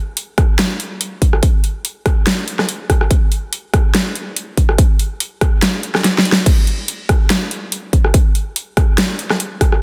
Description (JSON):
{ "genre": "dubstep", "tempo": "143 BPM", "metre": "4/4", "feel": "swing 54% on 16ths, half-time", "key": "none", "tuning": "none", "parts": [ { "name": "big-room dance drum kit", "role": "drums", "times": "0.2-9.8 s", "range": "crash cymbal, hi-hat, rim click, snare drum", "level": "-20 LUFS", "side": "equal", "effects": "none" }, { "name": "electronic kick drum", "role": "drums", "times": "0.4-9.7 s", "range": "none", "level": "-16 LUFS", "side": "equal", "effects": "none" } ], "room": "light reverb", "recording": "dense, heavily limited modern master", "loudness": "-16 LUFS", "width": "mono", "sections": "0.0-9.8 A section", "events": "kick drops out 6.0-6.5; drum fill 6.0-6.5", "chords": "none" }